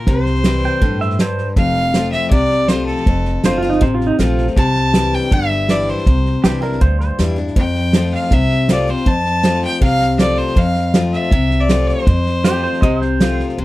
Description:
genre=honky-tonk and classic country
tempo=160 BPM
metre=4/4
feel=straight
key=unclear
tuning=A4 = 440 Hz
part: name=clear fiddle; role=melody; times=0.0-13.6 s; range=A4 to A5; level=-20 LUFS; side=equal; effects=none
part: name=picked steel-string acoustic guitar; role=accompaniment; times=0.0-13.6 s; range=F2 to F4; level=-19 LUFS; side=left 4 dB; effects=none
part: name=upright bass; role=bass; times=0.1-13.6 s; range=F1 to G2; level=-19 LUFS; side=equal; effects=none
part: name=unplugged drum kit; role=drums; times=0.1-13.5 s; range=hi-hat, kick drum, snare drum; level=-16 LUFS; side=right 1 dB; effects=none
part: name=pedal steel guitar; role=second line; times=0.7-7.2, 12.4-13.5 s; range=Eb4 to G5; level=-21 LUFS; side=right 4 dB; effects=none
room=light reverb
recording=dry, close 1970s-style studio recording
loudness=-13 LUFS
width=side -17 dB against mid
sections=0.0-1.6 A section; 1.6-13.6 B section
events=none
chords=0.1 C; 1.6 F; 4.6 Cadd9; 7.6 F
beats=| 0.07 0.45 0.82 1.20 | 1.57 1.95 2.32 2.70 | 3.07 3.44 3.82 4.20 | 4.57 4.94 5.32 5.69 | 6.07 6.44 6.82 7.19 | 7.57 7.94 8.32 8.70 | 9.07 9.45 9.82 10.20 | 10.57 10.95 11.32 11.70 | 12.07 12.45 12.83 13.20 | 13.58

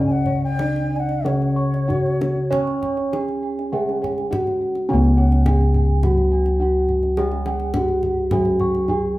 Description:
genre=Javanese gamelan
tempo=89-105 BPM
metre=4/4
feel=straight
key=unclear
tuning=A4 = 439 Hz
part: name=gamelan-type bronze metallophone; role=melody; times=0.0-9.2 s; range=C#4 to C#5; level=-23 LUFS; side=equal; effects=none
part: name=mellow bansuri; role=second line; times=0.0-2.7 s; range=C#5 to G#5+31c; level=-28 LUFS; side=left 3 dB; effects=none
part: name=gamelan-type bronze metallophone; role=accompaniment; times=0.0-9.2 s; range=C#3 to C#4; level=-24 LUFS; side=equal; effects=none
part: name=gamelan-type bossed gongs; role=arpeggios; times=0.0-9.2 s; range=C#5 to C#6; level=-31 LUFS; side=left 1 dB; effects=none
part: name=gamelan-type bronze metallophone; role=arpeggios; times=0.0-9.2 s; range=C#5 to C#6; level=-34 LUFS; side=right 6 dB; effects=none
part: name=gamelan-type bossed gongs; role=bass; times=0.0-9.2 s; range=C#2 to C#5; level=-21 LUFS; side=equal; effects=none
part: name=kendang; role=percussion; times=0.1-9.0 s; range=none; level=-29 LUFS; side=left 1 dB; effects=none
room=wet large studio reverb, RT60 0.9 s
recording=band playing live in one room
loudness=-17 LUFS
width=side -17 dB against mid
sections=0.0-4.9 A section; 4.9-9.2 B section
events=none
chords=none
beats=0.60 1.25 1.89 | 2.51 3.13 3.73 4.31 | 4.89 5.46 6.03 6.61 | 7.18 7.75 8.32 8.89

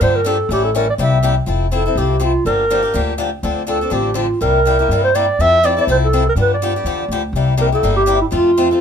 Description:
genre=acoustic string swing (jazz manouche)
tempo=246 BPM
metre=4/4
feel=swing 56% on 8ths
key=F major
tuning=A4 = 437 Hz
part: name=breathy clarinet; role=melody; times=0.0-8.8 s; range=E4 to E5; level=-16 LUFS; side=right 2 dB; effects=none
part: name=picked swing-style acoustic guitar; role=accompaniment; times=0.0-8.8 s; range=C3 to A4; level=-19 LUFS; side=left 5 dB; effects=none
part: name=upright bass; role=bass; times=0.0-8.7 s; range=F1 to G2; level=-19 LUFS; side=equal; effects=none
room=moderate small room reverb, RT60 0.5 s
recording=minimal, uncompressed stereo recording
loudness=-13 LUFS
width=side -7 dB against mid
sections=0.0-1.5 A section; 1.5-8.8 B section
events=none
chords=0.0 Gm7; 0.5 A7; 1.0 C7; 1.5 Fmaj7; 2.5 Gm7; 3.4 Dm7; 4.4 C7; 5.4 Fmaj7; 6.4 G7; 7.3 C7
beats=0.02 0.27 | 0.51 0.75 1.00 1.24 | 1.48 1.73 1.97 2.21 | 2.46 2.70 2.95 3.19 | 3.43 3.68 3.92 4.17 | 4.41 4.66 4.90 5.14 | 5.39 5.63 5.88 6.12 | 6.37 6.61 6.86 7.10 | 7.34 7.59 7.83 8.08 | 8.32 8.57

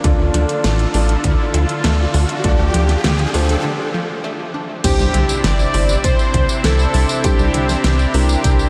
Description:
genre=synthwave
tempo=100 BPM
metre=4/4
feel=straight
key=unclear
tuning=A4 = 440 Hz
part: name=lush unison pad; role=sustained chords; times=0.0-8.7 s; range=C3 to A4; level=-25 LUFS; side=equal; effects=chorus, sidechain pumping
part: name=unison pluck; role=arpeggios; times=0.0-8.6 s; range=C3 to D4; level=-30 LUFS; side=equal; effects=none
part: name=dark grand piano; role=stabs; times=0.0-8.7 s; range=D4 to D5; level=-28 LUFS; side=equal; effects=diffuse ambient delay
part: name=chorused synth bass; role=bass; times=0.0-8.7 s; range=G1 to D2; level=-19 LUFS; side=equal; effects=tube saturation, sidechain pumping
part: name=electronic kick drum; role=drums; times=0.0-8.6 s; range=none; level=-19 LUFS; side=equal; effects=studio reverb
part: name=pop drum kit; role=drums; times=0.0-8.7 s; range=crash cymbal, hi-hat, snare drum, tambourine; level=-26 LUFS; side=equal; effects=studio reverb
part: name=riser and impact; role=sound effects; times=0.1-7.2 s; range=none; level=-29 LUFS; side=equal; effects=none
part: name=soft supersaw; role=melody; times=4.8-8.7 s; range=G4 to D5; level=-24 LUFS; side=equal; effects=vintage 12-bit sampler grit, tape echo
part: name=FM electric piano with soft pad layer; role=second line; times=4.8-8.7 s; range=G4 to D5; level=-32 LUFS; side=equal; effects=none
room=moderate huge ambient reverb, RT60 8.1 s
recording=dreamy mix soaked in reverb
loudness=-16 LUFS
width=mono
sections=0.0-4.8 A section; 4.8-8.7 B section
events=riser 0.1-3.6; filter sweep on analog synth pad 0.0-4.8; break 3.6-4.8; impact 4.8-7.2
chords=0.0 Dm; 4.8 Cadd9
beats=| 0.04 0.64 1.24 1.84 | 2.44 3.04 3.64 4.24 | 4.84 5.44 6.04 6.64 | 7.24 7.84 8.44

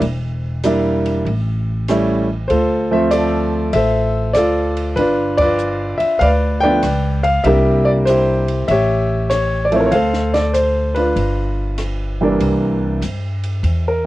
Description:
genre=jazz piano trio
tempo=97 BPM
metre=4/4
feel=swing 67% on 8ths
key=unclear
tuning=A4 = 440 Hz
part: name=upright bass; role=bass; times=0.0-14.1 s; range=E1 to G2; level=-19 LUFS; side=equal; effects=none
part: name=compact cocktail drum kit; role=drums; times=0.0-13.8 s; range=hi-hat, kick drum, ride cymbal, rim click, snare drum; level=-32 LUFS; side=right 1 dB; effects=cassette tape
part: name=clear grand piano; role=melody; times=0.6-14.1 s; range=C2 to G5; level=-16 LUFS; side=equal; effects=cassette tape
room=light reverb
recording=home recording on cassette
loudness=-14 LUFS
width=side -16 dB against mid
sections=0.0-12.4 A section; 12.4-14.1 B section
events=band accent 5.3-5.6; grand piano solo 12.4-14.1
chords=0.0 Em7b5; 1.3 A7; 2.5 Dm7; 5.0 G7; 7.5 C7; 8.7 A7; 9.9 Dm7; 11.2 G7; 12.4 C7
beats=| 0.02 0.64 1.26 1.88 | 2.50 3.12 3.74 4.36 | 4.98 5.60 6.21 6.83 | 7.45 8.07 8.69 9.31 | 9.93 10.54 11.16 11.78 | 12.40 13.02 13.64

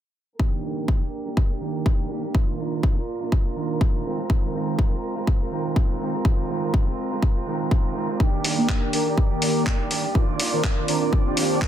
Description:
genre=filtered disco house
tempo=123 BPM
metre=4/4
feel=swing 55% on 16ths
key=unclear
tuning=A4 = 440 Hz
part: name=rich studio violin section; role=sustained chords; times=0.4-11.7 s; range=Bb4 to D6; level=-35 LUFS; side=left 1 dB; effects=sidechain pumping, low-pass filter
part: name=electric guitar at the edge of break-up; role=riff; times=0.4-11.7 s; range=Eb3 to G4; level=-28 LUFS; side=right 3 dB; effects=sidechain pumping, low-pass filter
part: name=electronic kick drum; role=drums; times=0.4-11.7 s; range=none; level=-21 LUFS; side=equal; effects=none
part: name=mellow synth brass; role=accompaniment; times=8.2-11.7 s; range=Eb3 to Bb4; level=-24 LUFS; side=equal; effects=chorus, phaser, cassette tape, sidechain pumping, low-pass filter
part: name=dusty soul sampler-style drum kit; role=drums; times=8.4-11.7 s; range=handclaps, hi-hat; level=-26 LUFS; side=left 1 dB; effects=sidechain pumping on hats, low-pass filter on hats, low-pass filter on snare
room=little or no reverb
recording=dense, heavily limited modern master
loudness=-21 LUFS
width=side -10 dB against mid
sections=0.4-11.7 A section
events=filter sweep 0.4-11.7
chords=0.4 Ebmaj7; 2.3 Bbadd11/Eb; 4.1 Bb9sus4; 8.2 Ebmaj7; 10.2 Cm11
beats=| 0.40 0.88 1.37 1.86 | 2.35 2.84 3.32 3.81 | 4.30 4.79 5.28 5.76 | 6.25 6.74 7.23 7.71 | 8.20 8.69 9.18 9.66 | 10.15 10.64 11.13 11.62

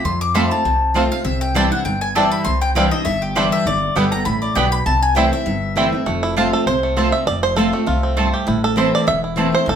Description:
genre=bluegrass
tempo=200 BPM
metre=4/4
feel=swing 54% on 8ths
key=unclear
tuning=A4 = 442 Hz
part: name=mandolin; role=melody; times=0.0-5.7 s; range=G4 to D6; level=-20 LUFS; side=left 2 dB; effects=none
part: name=picked steel-string acoustic guitar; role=accompaniment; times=0.0-9.8 s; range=E2 to G4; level=-20 LUFS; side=left 1 dB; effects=none
part: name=upright bass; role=bass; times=0.0-9.8 s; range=E1 to F2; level=-23 LUFS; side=equal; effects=none
part: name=mandolin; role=stabs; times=0.3-9.5 s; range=A3 to A5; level=-22 LUFS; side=right 2 dB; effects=none
part: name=bluegrass banjo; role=melody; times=0.4-9.8 s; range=G3 to E5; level=-20 LUFS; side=right 3 dB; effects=none
room=wet studio reverb, RT60 0.7 s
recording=heard from further back in the room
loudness=-15 LUFS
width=side -8 dB against mid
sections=0.0-6.1 A section; 6.1-9.8 A section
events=mandolin solo 0.0-6.1; five-string banjo solo 6.1-9.8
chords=0.0 F; 1.3 Cadd9; 3.7 G; 4.9 C6; 6.1 F; 8.5 Am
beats=| 0.05 0.35 0.66 0.96 | 1.26 1.56 1.86 2.16 | 2.46 2.76 3.06 3.36 | 3.66 3.96 4.26 4.57 | 4.87 5.17 5.47 5.77 | 6.07 6.37 6.67 6.97 | 7.27 7.57 7.87 8.17 | 8.47 8.77 9.07 9.37 | 9.67

